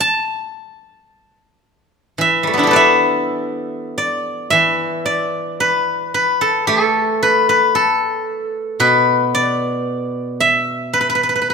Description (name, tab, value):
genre	chinese traditional, Chinese solo plucked strings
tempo	56 BPM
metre	4/4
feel	rubato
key	E yu mode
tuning	A4 = 440 Hz
part	steel-string zither	solo	0.0-11.5 s	B2 to A5	-14 LUFS	equal	none
room	moderate recital hall reverb, RT60 1.6 s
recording	minimal, uncompressed stereo recording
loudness	-14 LUFS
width	side -5 dB against mid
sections	0.0-4.5 A section; 4.5-11.5 B section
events	none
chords	none